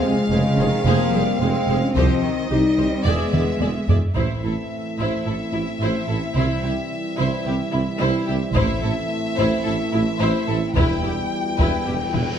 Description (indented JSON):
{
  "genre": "cinematic, epic orchestral film score",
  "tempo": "109 BPM",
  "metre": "4/4",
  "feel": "straight",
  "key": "F minor, A minor from 4.2 s",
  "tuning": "A4 = 441 Hz",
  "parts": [
    { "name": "rich chamber violin section", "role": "melody", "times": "0.0-12.4 s", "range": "Eb5 to G5", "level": "-29 LUFS", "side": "left 4 dB", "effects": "none" },
    { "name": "mellow French horn section", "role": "sustained chords", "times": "0.0-12.4 s", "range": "Ab3 to E4", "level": "-26 LUFS", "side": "left 4 dB", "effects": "none" },
    { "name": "warm trombone section", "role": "sustained chords", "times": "0.0-12.4 s", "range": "D3 to C4", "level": "-28 LUFS", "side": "right 4 dB", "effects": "none" },
    { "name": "rich symphonic cello section", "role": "bass", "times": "0.0-12.2 s", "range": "E2 to Ab3", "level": "-27 LUFS", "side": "right 2 dB", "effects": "none" },
    { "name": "warm symphonic violin section", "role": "second line", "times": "0.3-12.2 s", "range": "E4 to D5", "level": "-29 LUFS", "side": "left 2 dB", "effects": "none" },
    { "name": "rich studio viola section", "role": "accompaniment", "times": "0.3-12.2 s", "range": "E4 to Ab4", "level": "-29 LUFS", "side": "right 1 dB", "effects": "none" },
    { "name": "warm symphonic double bass section", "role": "bass", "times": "0.3-11.0 s", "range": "E1 to E2", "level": "-25 LUFS", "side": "right 3 dB", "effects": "none" },
    { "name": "warm tuba", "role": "bass", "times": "0.3-12.3 s", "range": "E1 to C2", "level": "-27 LUFS", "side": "right 4 dB", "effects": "none" },
    { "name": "taiko ensemble", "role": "drums", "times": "2.0-5.2, 8.6-12.4 s", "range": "none", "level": "-23 LUFS", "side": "equal", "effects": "none" },
    { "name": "reverse cymbal", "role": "sound effects", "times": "11.9-12.4 s", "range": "none", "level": "-37 LUFS", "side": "equal", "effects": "none" }
  ],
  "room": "moderate recital hall reverb, RT60 1.5 s",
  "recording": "dark, warm production",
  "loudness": "-18 LUFS",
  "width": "side -8 dB against mid",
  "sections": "0.0-4.2 A section; 4.2-12.4 B section",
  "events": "drum fill 3.3-4.2, 12.1; reverse cymbal 11.9-12.4",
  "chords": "0.0 Fm; 2.0 Cm; 3.1 E7; 4.2 Am; 6.4 C; 8.6 Am; 10.8 Em"
}